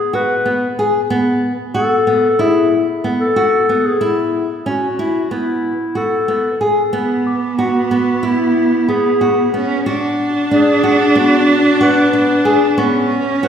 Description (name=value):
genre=contemporary instrumental, chamber music in an uneven meter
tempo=185 BPM (eighths)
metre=9/8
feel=straight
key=E mixolydian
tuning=A4 = 439 Hz
part: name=mellow clarinet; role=melody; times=0.0-13.5 s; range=E4 to B4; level=-17 LUFS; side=left 1 dB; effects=none
part: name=nylon-string guitar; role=arpeggios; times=0.1-13.5 s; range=B3 to G#4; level=-17 LUFS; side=left 1 dB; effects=none
part: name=clear cello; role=second line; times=6.9-13.5 s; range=B3 to D4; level=-15 LUFS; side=right 1 dB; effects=none
part: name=glockenspiel with rubber mallets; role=texture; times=7.3-13.5 s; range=C#6 to D6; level=-28 LUFS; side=right 2 dB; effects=none
room=wet concert hall reverb, RT60 2.4 s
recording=heard from further back in the room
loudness=-13 LUFS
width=side -8 dB against mid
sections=0.0-13.5 A section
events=none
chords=0.0 Eadd9 (rootless); 1.1 Asus2; 6.9 E9 (rootless); 12.8 Aadd9 (rootless)